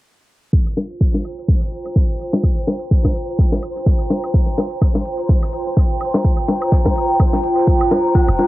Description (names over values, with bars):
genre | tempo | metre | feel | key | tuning
minimal techno | 126 BPM | 4/4 | swing 56% on 16ths | unclear | A4 = 440 Hz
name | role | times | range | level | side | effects
damped 70s drum kit | drums | 0.5-8.5 s | hi-hat, shaker, snare drum | -42 LUFS | equal | none
electronic kick drum | drums | 0.5-8.3 s | none | -15 LUFS | equal | overdrive, cassette tape
flickering grainy texture | texture | 1.3-8.5 s | C5 | -29 LUFS | equal | built-in reverb, sidechain pumping, cassette tape
warbly tape-like pad | texture | 0.9-8.5 s | F4 to Bb5 | -22 LUFS | right 1 dB | chorus, built-in reverb, sidechain pumping, cassette tape
woodblock and bongos | percussion | 0.7-8.5 s | none | -20 LUFS | left 2 dB | cassette tape, tape echo
electronic hi-hat | drums | 0.8-8.5 s | none | -53 LUFS | equal | none
dark detuned synth bell | riff | 8.2-8.4 s | F4 | -19 LUFS | right 1 dB | chorus, phaser, sidechain pumping, cassette tape
punchy sub bass | bass | 8.3-8.4 s | F1 | -18 LUFS | equal | sidechain pumping
room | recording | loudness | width
moderate studio reverb, RT60 0.6 s | home recording on cassette, low-pass filter | -15 LUFS | side -17 dB against mid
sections
0.5-8.5 A section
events
filter sweep 0.5-8.5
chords
0.5 Fsus4